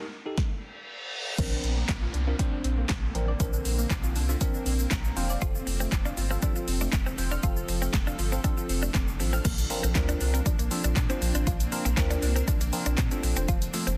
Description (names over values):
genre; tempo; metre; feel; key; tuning
dance-pop; 119 BPM; 4/4; straight; unclear; A4 = 440 Hz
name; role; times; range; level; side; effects
tine electric piano; accompaniment; 0.0-13.9 s; A3 to Bb5; -37 LUFS; equal; phaser, sidechain pumping
deep house drum kit; drums; 0.4-14.0 s; crash cymbal, handclaps, hi-hat, kick drum, shaker, snare drum; -31 LUFS; equal; overdrive
reverse cymbal, downlifter and impact; sound effects; 0.6-5.4, 9.5-11.5 s; none; -41 LUFS; equal; none
granular cloud pad; sustained chords; 2.6-14.0 s; D3 to A4; -41 LUFS; equal; built-in reverb, sidechain pumping
soft round pluck; arpeggios; 1.4-13.8 s; F3 to F6; -41 LUFS; equal; chorus, sidechain pumping, tape echo
warm sub bass; bass; 1.4-14.0 s; E1 to Bb2; -31 LUFS; equal; sidechain pumping
direct-recorded clean electric guitar; riff; 5.4-14.0 s; Bb3 to F4; -39 LUFS; equal; subtle chorus
room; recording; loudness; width
little or no reverb; dense, heavily limited modern master; -27 LUFS; mono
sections
0.0-1.4 A section; 1.4-9.5 B section; 9.5-14.0 C section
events
reverse cymbal 0.6-1.4; tine electric piano fill 4.7-5.4; impact 9.5-11.5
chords
0.0 Eb; 1.4 Bbadd9; 5.4 F; 9.5 Bbadd9